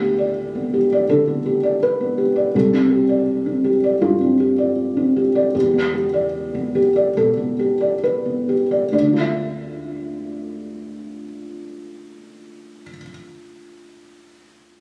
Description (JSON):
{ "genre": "classical", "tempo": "66-83 BPM", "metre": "4/4", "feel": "rubato", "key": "D dorian", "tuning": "A4 = 440 Hz", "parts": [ { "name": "felt-muted upright piano", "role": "accompaniment", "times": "0.0-14.8 s", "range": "C2 to E5", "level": "-20 LUFS", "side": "equal", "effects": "none" } ], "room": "moderate plate reverb, RT60 3.0 s", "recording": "recorded on a phone in the room, club reverb, compression", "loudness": "-19 LUFS", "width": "mono", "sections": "0.0-8.9 A section; 8.9-12.4 B section", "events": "slowing down 1.1-8.9", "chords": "0.0 G/D; 2.5 Csus2; 5.5 Em7; 8.9 Dmadd9" }